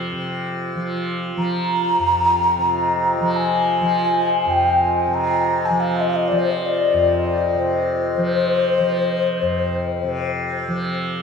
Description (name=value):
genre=world meditative, free-time meditation music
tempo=free time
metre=none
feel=none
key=F minor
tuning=A4 = 441 Hz
part: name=tanpura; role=drone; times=0.0-11.2 s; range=F2 to F3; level=-24 LUFS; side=equal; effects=none
part: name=glass harmonica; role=texture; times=0.5-9.8 s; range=F4 to Eb5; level=-25 LUFS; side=left 1 dB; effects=none
part: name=breathy mellow wooden-headed alto flute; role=melody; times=1.4-10.3 s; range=C5 to Bb5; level=-19 LUFS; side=left 2 dB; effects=tape echo
room=wet plate reverb, RT60 2.9 s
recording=dreamy mix soaked in reverb, cassette tape, studio reverb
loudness=-17 LUFS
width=side -6 dB against mid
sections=0.1-11.2 A section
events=none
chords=none